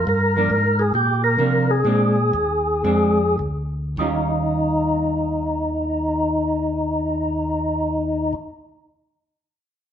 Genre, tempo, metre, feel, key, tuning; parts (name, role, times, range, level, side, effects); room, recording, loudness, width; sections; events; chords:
soul jazz organ trio; 98-140 BPM; 4/4; swing 68% on 8ths; Eb mixolydian; A4 = 440 Hz
percussive tonewheel organ; melody; 0.0-8.3 s; Eb4 to Bb4; -20 LUFS; left 1 dB; overdrive, chorus vibrato, slow rotary speaker
mellow tonewheel organ; bass; 0.0-8.3 s; D2 to C3; -24 LUFS; equal; slow rotary speaker
vintage hollow-body jazz guitar; accompaniment; 0.4-8.4 s; Eb3 to F4; -25 LUFS; right 2 dB
wet stone room reverb, RT60 1.1 s; band playing live in one room; -18 LUFS; side -9 dB against mid
0.0-4.0 A section; 4.0-8.9 B section
slowing down 0.1-4.0
0.1 Gm7; 1.9 Bb9; 4.0 Eb9